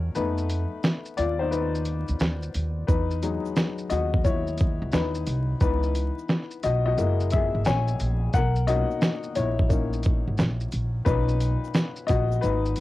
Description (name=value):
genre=lo-fi hip hop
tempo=88 BPM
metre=4/4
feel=swing 66% on 16ths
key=B major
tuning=A4 = 438 Hz
part: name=warm upright piano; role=accompaniment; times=0.0-12.8 s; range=A#2 to G#5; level=-28 LUFS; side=left 5 dB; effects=cassette tape, low-pass filter
part: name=upright bass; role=bass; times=0.0-12.8 s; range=F#1 to F2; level=-26 LUFS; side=equal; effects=none
part: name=dusty soul sampler-style drum kit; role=drums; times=0.2-12.8 s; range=finger snaps, hi-hat, kick drum, shaker, snare drum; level=-25 LUFS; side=equal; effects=overdrive, vintage 12-bit sampler grit, cassette tape
part: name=tube shaker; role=percussion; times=2.9-12.8 s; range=none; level=-52 LUFS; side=right 9 dB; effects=none
room=light reverb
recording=home recording on cassette, vinyl crackle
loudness=-22 LUFS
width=side -16 dB against mid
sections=0.0-12.8 A section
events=upright piano solo 0.0-12.8; kick muted 0.2-2.9, 12.4-12.8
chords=0.2 F7#11; 2.9 Emaj9; 5.6 C#m9; 7.0 F#7; 8.3 Bmaj7